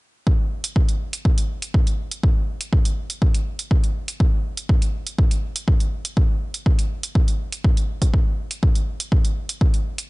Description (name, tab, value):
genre	acid house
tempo	122 BPM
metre	4/4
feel	straight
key	none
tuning	none
part	electronic kick drum	drums	0.3-9.7 s	none	-18 LUFS	equal	none
part	electronic hi-hat	drums	0.6-10.1 s	none	-28 LUFS	right 3 dB	none
room	little or no reverb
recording	nothing above 10.9 kHz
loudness	-19 LUFS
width	side -23 dB against mid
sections	0.3-10.1 A section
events	none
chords	none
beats	| 0.27 0.76 1.25 1.74 | 2.23 2.73 3.22 3.71 | 4.20 4.69 5.18 5.68 | 6.17 6.66 7.15 7.64 | 8.14 8.63 9.12 9.61